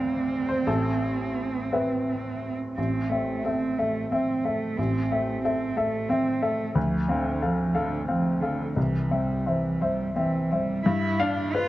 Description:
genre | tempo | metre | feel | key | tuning
neoclassical piano and strings | 56-61 BPM (dotted quarters) | 6/8 | rubato | A minor | A4 = 440 Hz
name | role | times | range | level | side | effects
warm cello | second line | 0.0-11.7 s | D3 to F4 | -28 LUFS | right 3 dB | analog delay
clear baby grand piano | accompaniment | 0.0-11.7 s | A1 to F5 | -26 LUFS | left 2 dB | none
room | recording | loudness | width
wet studio reverb, RT60 0.6 s | cassette tape | -24 LUFS | side -15 dB against mid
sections
0.0-2.8 A section; 2.8-10.9 B section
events
none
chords
0.0 Dm7; 0.7 Amadd9; 2.8 Am; 6.8 Dm7; 8.8 C; 10.9 G7

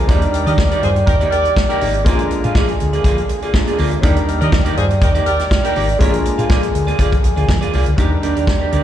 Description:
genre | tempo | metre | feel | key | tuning
disco | 122 BPM | 4/4 | straight | Eb major | A4 = 439 Hz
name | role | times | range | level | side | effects
warm grand piano | accompaniment | 0.0-8.8 s | F3 to Ab5 | -24 LUFS | left 3 dB | slapback echo
warm French horn section | sustained chords | 0.0-8.8 s | D3 to D5 | -21 LUFS | right 1 dB | none
fingered electric bass with an envelope filter | bass | 0.0-8.8 s | Ab1 to Eb3 | -17 LUFS | equal | none
semi-hollow electric guitar | accompaniment | 0.1-8.8 s | Bb3 to F5 | -23 LUFS | right 4 dB | slapback echo
warm soul drum kit | drums | 0.1-8.8 s | hi-hat, kick drum, snare drum | -17 LUFS | equal | none
mellow horn section | stabs | 0.3-5.8 s | Eb4 to Eb5 | -22 LUFS | equal | slapback echo
room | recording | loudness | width
studio ambience | live gig heard through the venue's PA, recital hall reverb | -13 LUFS | side -11 dB against mid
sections
0.0-8.0 A section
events
none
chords
0.1 Ebmaj7; 2.1 Bb7; 4.0 Ebmaj7; 6.0 Bb7; 8.0 Ebmaj7

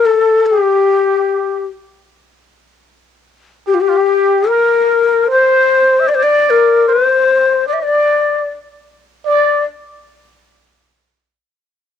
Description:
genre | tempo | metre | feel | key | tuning
Turkish makam ensemble | 75 BPM | 4/4 | straight | D makam ussak | A4 = 441 Hz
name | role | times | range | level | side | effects
breathy ney | melody | 0.0-9.6 s | F4 to E5-28c | -11 LUFS | left 5 dB | cassette tape
trumpet with plunger mute | second line | 0.0-9.6 s | F4 to E5-30c | -18 LUFS | right 10 dB | none
room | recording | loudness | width
light reverb, small room ambience | home recording on cassette | -10 LUFS | side -8 dB against mid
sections
0.0-9.3 A section; 9.3-12.0 B section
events
none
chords
none

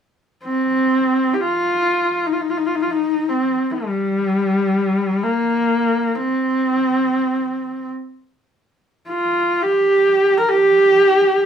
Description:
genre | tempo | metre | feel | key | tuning
mongolian traditional | free time | none | none | C yu mode | A4 = 440 Hz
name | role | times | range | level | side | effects
clear horsehead fiddle | melody | 0.4-11.5 s | G3 to Bb4 | -16 LUFS | equal | none
room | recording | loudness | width
moderate studio ambience, RT60 0.5 s | band playing live in one room | -15 LUFS | side -8 dB against mid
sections
0.0-11.5 A section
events
none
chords
none

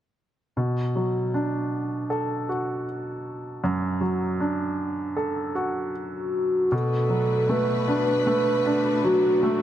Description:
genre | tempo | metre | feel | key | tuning
pop | 78 BPM | 4/4 | straight | B minor | A4 = 440 Hz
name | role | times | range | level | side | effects
clear baby grand piano | accompaniment | 0.6-9.6 s | F#2 to A4 | -24 LUFS | equal | none
hollow clarinet-like synth lead | melody | 6.0-9.6 s | F#4 to B4 | -23 LUFS | equal | chorus
warm symphonic string section | sustained chords | 6.7-9.6 s | A3 to B4 | -30 LUFS | left 2 dB | none
room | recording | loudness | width
light reverb, small room ambience | none | -22 LUFS | side -11 dB against mid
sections
0.6-6.7 A section; 6.7-9.6 B section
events
none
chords
0.6 Bm7

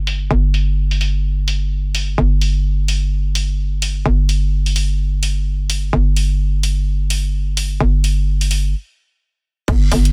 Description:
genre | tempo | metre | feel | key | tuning
bass house | 128 BPM | 4/4 | swing 59% on 16ths | unclear | A4 = 439 Hz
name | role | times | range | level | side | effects
hollow knocking FM bass | bass | 0.0-10.1 s | G1 | -18 LUFS | equal | overdrive, sidechain pumping
house drum kit | drums | 0.1-10.1 s | crash cymbal, hi-hat | -26 LUFS | equal | low-pass filter on hats, low-pass filter on cymbals, low-pass filter on room
electronic kick drum | drums | 9.7-9.8 s | none | -19 LUFS | equal | none
room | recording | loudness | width
little or no reverb | dense, heavily limited modern master | -18 LUFS | mono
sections
0.0-9.7 A section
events
stop 8.7-9.7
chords
none

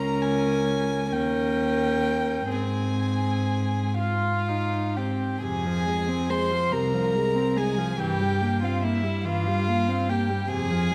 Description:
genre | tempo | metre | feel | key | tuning
classical, slow romantic movement for string quartet | 40-49 BPM (dotted quarters) | 6/8 | rubato | Ab major, F minor from 5.4 s | A4 = 439 Hz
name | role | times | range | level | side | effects
dark violin | melody | 0.0-10.9 s | E5 to C6 | -34 LUFS | equal | none
warm violin | second line | 0.0-10.9 s | E4 to C5 | -31 LUFS | equal | none
warm viola | accompaniment | 0.0-10.9 s | C3 to F4 | -31 LUFS | equal | none
warm cello | bass | 0.0-10.9 s | C2 to Ab2 | -30 LUFS | equal | none
room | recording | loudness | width
moderate scoring stage reverb, RT60 1.7 s | none | -25 LUFS | mono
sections
0.0-5.4 A section; 5.4-10.9 B section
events
none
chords
0.0 Bbm/Db; 1.1 Eb7; 2.5 Ab; 5.4 Fm; 8.0 C7/G

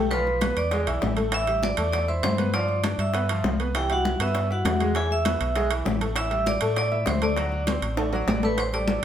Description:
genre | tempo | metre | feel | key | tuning
latin, salsa | 198 BPM | 4/4 | straight | unclear | A4 = 440 Hz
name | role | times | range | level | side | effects
vibraphone with hard mallets | melody | 0.0-9.0 s | F#4 to E6 | -27 LUFS | right 1 dB | none
bright grand piano | accompaniment | 0.0-9.0 s | E3 to E5 | -30 LUFS | equal | none
deep dub fingered electric bass | bass | 0.0-9.0 s | A1 to A2 | -28 LUFS | equal | none
bongos | percussion | 0.1-9.0 s | none | -34 LUFS | left 3 dB | none
congas | percussion | 0.1-9.0 s | none | -30 LUFS | left 5 dB | none
timbales | percussion | 0.1-9.0 s | none | -32 LUFS | right 6 dB | none
room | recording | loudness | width
moderate studio reverb, RT60 1.0 s | band playing live in one room | -22 LUFS | side -10 dB against mid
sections
0.0-8.6 A section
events
drum fill 8.0-8.6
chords
0.1 Bdim; 0.7 E7; 1.3 Am7; 2.5 G7; 3.7 Cmaj7; 5.0 E; 6.2 A7(no3); 7.4 D7

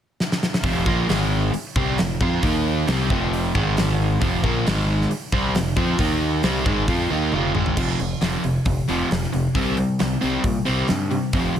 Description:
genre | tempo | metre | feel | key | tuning
hard rock | 135 BPM | 4/4 | straight | F minor | A4 = 437 Hz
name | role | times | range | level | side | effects
big rock drum kit | drums | 0.2-11.6 s | crash cymbal, hi-hat, kick drum, snare drum, toms | -24 LUFS | equal | none
overdriven semi-hollow guitar | riff | 0.6-11.6 s | F2 to F4 | -21 LUFS | equal | none
growling fingered electric bass | bass | 0.6-11.5 s | F1 to Bb2 | -26 LUFS | equal | overdrive
room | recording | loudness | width
light reverb | none | -19 LUFS | side -9 dB against mid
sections
0.6-7.8 A section; 7.8-11.6 B section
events
drum fill 0.2-0.6, 7.3-7.8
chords
0.0 N.C.; 0.6 F5; 1.1 Ab5; 1.5 F5; 2.4 Eb5; 2.9 F5; 3.5 Ab5; 4.2 F5; 4.7 Ab5; 5.1 F5; 6.0 Eb5; 6.4 Fm; 7.8 F5; 9.6 C5

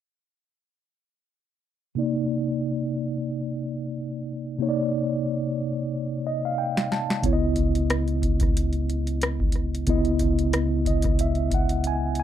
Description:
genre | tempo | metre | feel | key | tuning
R&B, neo-soul | 91 BPM | 4/4 | swing 57% on 16ths | unclear | A4 = 441 Hz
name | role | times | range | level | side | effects
mellow tine electric piano | accompaniment | 2.0-12.2 s | C3 to A5 | -25 LUFS | equal | medium stereo tremolo, low-pass filter
booming analog drum machine | drums | 6.8-12.2 s | hi-hat, kick drum, rim click, snare drum | -25 LUFS | equal | overdrive
deep dub fingered electric bass | bass | 7.2-12.2 s | Db2 | -26 LUFS | equal | none
room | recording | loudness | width
light reverb | dry, close 1970s-style studio recording | -23 LUFS | side -11 dB against mid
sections
2.0-12.2 A section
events
filter sweep on tine electric piano 2.0-12.2; tine electric piano fill 5.9-7.2, 10.5-12.2; drum fill 6.6-7.2, 11.8-12.2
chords
2.0 Cm9; 7.2 Dbm9

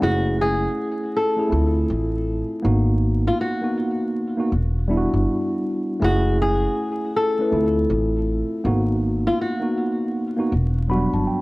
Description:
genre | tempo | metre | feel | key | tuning
lo-fi hip hop | 80 BPM | 4/4 | swing 63% on 16ths | F# dorian | A4 = 438 Hz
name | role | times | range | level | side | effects
flamenco guitar | melody | 0.0-11.2 s | E#4 to A4 | -24 LUFS | left 2 dB | low-pass filter, tape echo
mellow tine electric piano | accompaniment | 0.0-11.4 s | F#3 to B5 | -22 LUFS | equal | medium stereo tremolo, cassette tape, low-pass filter
upright bass | bass | 0.0-11.2 s | E1 to D2 | -22 LUFS | equal | none
room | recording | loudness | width
light reverb, studio reverb | worn, warbling old tape, cassette tape, vinyl crackle, warbly pitch drift | -19 LUFS | side -22 dB against mid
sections
0.0-11.4 A section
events
none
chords
0.0 F#m9; 1.5 Dm9; 2.6 G#m9; 4.5 Em9; 6.0 F#m9; 7.5 Dm9; 8.6 G#m9; 10.5 Em9

